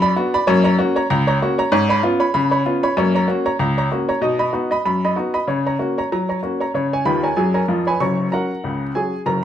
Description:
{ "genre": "ragtime piano", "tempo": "96 BPM", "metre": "2/4", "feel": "swing 56% on 16ths", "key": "F# major", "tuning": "A4 = 440 Hz", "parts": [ { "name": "clear upright piano", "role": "solo", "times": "0.0-9.4 s", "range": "F#1 to C#6", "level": "-16 LUFS", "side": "equal", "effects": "none" } ], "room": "moderate studio reverb, RT60 0.8 s", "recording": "none", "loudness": "-16 LUFS", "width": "side -10 dB against mid", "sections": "0.0-8.0 A section; 8.0-9.4 B section", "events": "upright piano fill 7.1-8.0", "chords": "0.5 F#; 1.7 C#7/G#; 3.0 F#; 4.2 B; 5.5 F#/C#; 6.7 C#; 8.0 F#" }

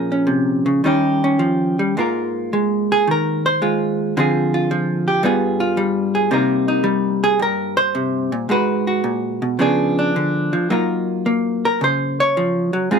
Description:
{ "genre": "solo jazz", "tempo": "110 BPM", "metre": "4/4", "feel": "swing 69% on 8ths, rubato", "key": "Ab major", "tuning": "A4 = 441 Hz", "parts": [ { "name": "vintage hollow-body jazz guitar", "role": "solo", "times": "0.0-13.0 s", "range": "G2 to Db5", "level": "-16 LUFS", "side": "equal", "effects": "none" } ], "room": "little or no reverb", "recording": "close, detailed microphones", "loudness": "-16 LUFS", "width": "side -6 dB against mid", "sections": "0.0-2.0 A section; 2.0-13.0 B section", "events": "hollow-body jazz guitar solo 2.0-13.0", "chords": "0.0 Bbm7; 0.8 Eb7; 2.0 Ab69; 4.2 Dm7b5; 5.2 G7b9; 6.3 Cm7; 8.5 Abm9; 9.6 Db7b9; 10.7 Gb6" }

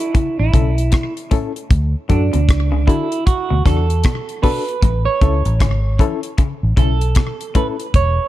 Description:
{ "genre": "roots reggae", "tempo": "77 BPM", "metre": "4/4", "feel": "swing 61% on 16ths", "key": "A major", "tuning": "A4 = 440 Hz", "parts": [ { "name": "clean electric guitar", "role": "accompaniment", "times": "0.0-8.3 s", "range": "D4 to C#5", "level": "-22 LUFS", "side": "right 6 dB", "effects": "spring reverb, tape echo" }, { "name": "barky reed electric piano", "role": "stabs", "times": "0.0-7.9 s", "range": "C#4 to A4", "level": "-26 LUFS", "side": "left 7 dB", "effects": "fast tremolo" }, { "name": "damped 70s drum kit", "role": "drums", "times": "0.0-8.2 s", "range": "hi-hat, kick drum, rim click", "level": "-15 LUFS", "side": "equal", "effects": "none" }, { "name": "semi-hollow electric guitar", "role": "arpeggios", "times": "0.1-7.7 s", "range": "A2 to E3", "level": "-27 LUFS", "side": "left 5 dB", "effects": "lush chorus" }, { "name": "vintage muted fingered electric bass", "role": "bass", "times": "0.4-8.2 s", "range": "E1 to F#2", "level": "-16 LUFS", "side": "equal", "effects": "none" } ], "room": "little or no reverb", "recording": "dark, warm production", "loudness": "-14 LUFS", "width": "side -14 dB against mid", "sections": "0.0-8.3 A section", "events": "clean electric guitar solo 0.0-8.3", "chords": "0.0 A; 1.7 D; 4.8 A" }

